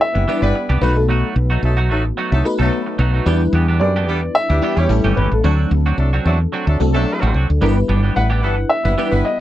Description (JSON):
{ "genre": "pop", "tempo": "110 BPM", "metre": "4/4", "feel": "swing 54% on 16ths", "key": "G major", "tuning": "A4 = 440 Hz", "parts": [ { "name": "warm baby grand piano", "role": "melody", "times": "0.0-9.4 s", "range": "A4 to F#5", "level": "-20 LUFS", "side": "equal", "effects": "none" }, { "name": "FM electric piano", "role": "accompaniment", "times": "0.0-9.4 s", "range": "F#3 to B4", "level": "-22 LUFS", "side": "left 2 dB", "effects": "ensemble chorus" }, { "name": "mellow horn section", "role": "second line", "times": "0.1-9.4 s", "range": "E3 to B4", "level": "-24 LUFS", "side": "equal", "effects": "none" }, { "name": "semi-hollow electric guitar", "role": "riff", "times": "0.2-9.3 s", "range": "E3 to A4", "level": "-24 LUFS", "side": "right 4 dB", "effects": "lush chorus" }, { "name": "woody fretless electric bass", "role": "bass", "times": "0.2-9.2 s", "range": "F#1 to F#2", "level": "-16 LUFS", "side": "equal", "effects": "none" } ], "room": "little or no reverb", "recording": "dark, warm production", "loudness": "-14 LUFS", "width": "side -13 dB against mid", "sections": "0.0-9.4 A section", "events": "none", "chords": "0.0 G6; 0.8 B7; 3.3 Em7; 4.9 A7; 5.4 D7; 7.6 G6" }